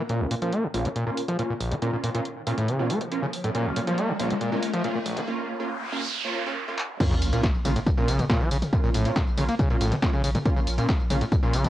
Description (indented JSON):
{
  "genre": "driving peak-time techno",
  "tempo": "139 BPM",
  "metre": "4/4",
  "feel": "straight",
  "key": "Bb harmonic minor",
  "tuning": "A4 = 439 Hz",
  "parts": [
    { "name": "screaming distorted acid line", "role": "riff", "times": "0.0-11.7 s", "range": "Bb1 to Bb3", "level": "-27 LUFS", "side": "equal", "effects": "distortion, chorus, sidechain pumping, cassette tape, analog delay" },
    { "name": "swell, riser, noise sweep and sub drop", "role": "sound effects", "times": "0.0-8.7 s", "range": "none", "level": "-32 LUFS", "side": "equal", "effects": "none" },
    { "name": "rave stab", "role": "stabs", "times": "0.1-11.6 s", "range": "Bb3 to F4", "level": "-31 LUFS", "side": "right 2 dB", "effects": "chorus, built-in reverb, sidechain pumping, cassette tape, analog delay" },
    { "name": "punchy analog drum machine", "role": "drums", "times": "0.1-11.7 s", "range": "crash cymbal, handclaps, hi-hat, ride cymbal, snare drum, tambourine, toms", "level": "-32 LUFS", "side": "equal", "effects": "high-pass filter on hats, cassette tape, high-pass filter on toms, high-pass filter on snare, high-pass filter on cymbals, high-pass filter on perc, high-pass filter on room" },
    { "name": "electronic kick drum", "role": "drums", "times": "7.0-11.4 s", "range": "none", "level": "-24 LUFS", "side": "equal", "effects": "cassette tape" },
    { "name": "saturated sub bass", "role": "bass", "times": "7.1-11.6 s", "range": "Bb1", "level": "-28 LUFS", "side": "equal", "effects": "tube saturation, sidechain pumping, low-pass filter" }
  ],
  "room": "moderate studio reverb, RT60 0.5 s",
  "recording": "home recording on cassette, high-pass filter",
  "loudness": "-23 LUFS",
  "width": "side -13 dB against mid",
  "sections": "0.1-7.0 A section; 7.0-11.7 B section",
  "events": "build-up 0.1-7.0; riser 0.1-5.3; filter sweep on acid bass 0.1-7.0; filter sweep 0.1-7.0; break 5.3-7.0; noise sweep 5.3-7.0; drum fill 6.8; drop 7.0-11.7; impact 7.0-8.7",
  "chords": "0.1 Bbm"
}